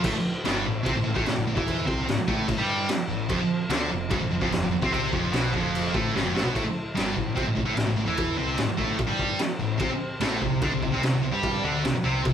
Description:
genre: garage rock duo or trio.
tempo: 147 BPM.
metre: 4/4.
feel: straight.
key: A minor.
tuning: A4 = 440 Hz.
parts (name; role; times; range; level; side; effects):
combo organ; sustained chords; 0.0-12.3 s; C4 to D5; -39 LUFS; left 2 dB; none.
thick fuzz guitar; riff; 0.0-12.3 s; F2 to G4; -25 LUFS; equal; distortion.
growling picked electric bass; bass; 0.0-12.3 s; F1 to G2; -34 LUFS; equal; overdrive, tube saturation.
raw garage drum kit; drums; 0.0-12.3 s; crash cymbal, kick drum, snare drum; -28 LUFS; equal; none.
room: moderate large studio reverb, RT60 0.7 s.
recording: band playing live in one room.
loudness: -23 LUFS.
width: side -9 dB against mid.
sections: 0.0-6.5 A section; 6.5-12.3 B section.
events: drum fill 6.1-6.5.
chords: 0.0 Am; 3.3 F5; 6.5 Am; 9.8 C5.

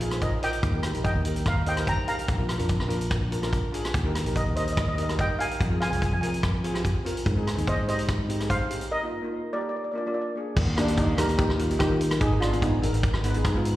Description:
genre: calypso.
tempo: 145 BPM.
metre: 4/4.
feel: straight.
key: Eb major.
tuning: A4 = 440 Hz.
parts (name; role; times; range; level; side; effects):
steel pan; accompaniment; 0.0-13.8 s; Bb3 to C5; -32 LUFS; equal; slapback echo.
fingered electric bass; bass; 0.0-13.8 s; Ab1 to Eb3; -27 LUFS; equal; none.
vintage drum kit; drums; 0.0-13.8 s; crash cymbal, hi-hat, kick drum, rim click; -28 LUFS; equal; none.
steel pan; melody; 0.2-13.2 s; Bb3 to Bb5; -29 LUFS; equal; slapback echo, tape echo.
room: light reverb.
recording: live gig heard through the venue's PA, recital hall reverb.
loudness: -23 LUFS.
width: side -15 dB against mid.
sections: 0.0-10.6 A section; 10.6-13.8 B section.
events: break 8.9-10.6.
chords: 0.0 Bbsus4; 0.6 Ebadd9; 2.3 Bb; 3.9 Eb; 5.6 Fm; 7.3 Abmaj7; 8.9 Bbsus4; 9.7 Bb; 10.6 Eb; 12.2 Abm.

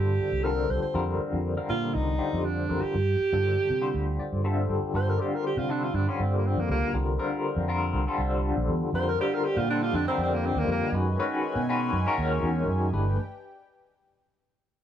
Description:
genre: jazz.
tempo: 120 BPM.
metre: 4/4.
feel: straight.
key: unclear.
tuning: A4 = 439 Hz.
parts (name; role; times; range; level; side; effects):
breathy alto saxophone; melody; 0.0-10.9 s; Bb3 to C5; -28 LUFS; right 2 dB; none.
barky tine electric piano; accompaniment; 0.0-13.2 s; D3 to G5; -29 LUFS; left 3 dB; overdrive, fast tremolo, phaser.
fingered electric bass; bass; 0.0-13.2 s; G1 to C3; -28 LUFS; right 1 dB; none.
warm analog pad; sustained chords; 8.9-13.2 s; D4 to G#5; -38 LUFS; right 1 dB; chorus.
room: light reverb.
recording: band playing live in one room.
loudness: -24 LUFS.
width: side -10 dB against mid.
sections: 0.0-5.0 A section; 5.0-12.9 B section; 12.9-14.8 C section.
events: tine electric piano fill 4.0-5.0; alto saxophone solo 5.0-12.9.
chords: 0.0 Csus24; 1.0 F13sus4; 3.0 G9sus4; 6.9 C13sus4; 8.9 F13sus4; 10.9 F#13sus4; 12.9 G.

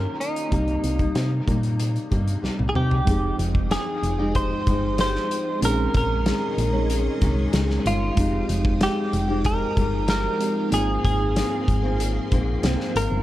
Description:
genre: indie pop, bedroom pop.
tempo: 94 BPM.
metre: 4/4.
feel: straight.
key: F minor.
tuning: A4 = 435 Hz.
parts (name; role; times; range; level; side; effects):
direct-recorded clean electric guitar; melody; 0.0-13.2 s; Eb4 to C5; -27 LUFS; equal; analog chorus, dub echo.
mellow tine electric piano; accompaniment; 0.0-13.2 s; Ab3 to G5; -32 LUFS; right 4 dB; medium stereo tremolo, cassette tape, dub echo.
nylon-string guitar; accompaniment; 0.0-13.2 s; Ab2 to G4; -28 LUFS; left 3 dB; ensemble chorus, vibrato effect, dub echo.
solid FM bass; bass; 0.0-13.2 s; F1 to C3; -24 LUFS; equal; none.
loose indie drum kit; drums; 0.2-13.1 s; hi-hat, kick drum, snare drum, toms; -26 LUFS; equal; none.
string machine, full ensemble; sustained chords; 3.1-13.2 s; Ab3 to Eb6; -33 LUFS; right 1 dB; ensemble chorus.
room: small room ambience.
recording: echo-heavy mix.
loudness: -20 LUFS.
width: side -14 dB against mid.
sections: 0.0-3.1 A section; 3.1-13.2 B section.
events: drum fill 2.4-3.1.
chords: 0.0 Eb7; 0.5 Cm7; 3.1 Fm9; 5.6 Bbm11; 8.2 Fm9; 10.7 Ab69.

